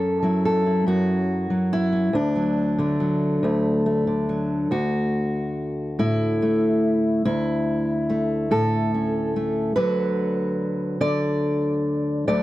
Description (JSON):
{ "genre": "folk, solo fingerstyle acoustic guitar", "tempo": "48 BPM (dotted quarters)", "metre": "6/8", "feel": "straight", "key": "unclear", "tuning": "A4 = 440 Hz", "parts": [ { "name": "fingerpicked steel-string acoustic guitar", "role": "solo", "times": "0.0-12.4 s", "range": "D2 to D5", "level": "-20 LUFS", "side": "equal", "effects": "none" } ], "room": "light reverb, studio ambience", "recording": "dry, close 1970s-style studio recording", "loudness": "-20 LUFS", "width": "side -16 dB against mid", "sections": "0.0-4.7 A section; 4.7-12.4 B section", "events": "none", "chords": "0.0 F#m7; 2.1 D; 4.7 A/D; 9.8 Bm/D", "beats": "0.87 | 2.14 3.41 | 4.69 5.97 | 7.24 8.50 | 9.76 11.02 | 12.28" }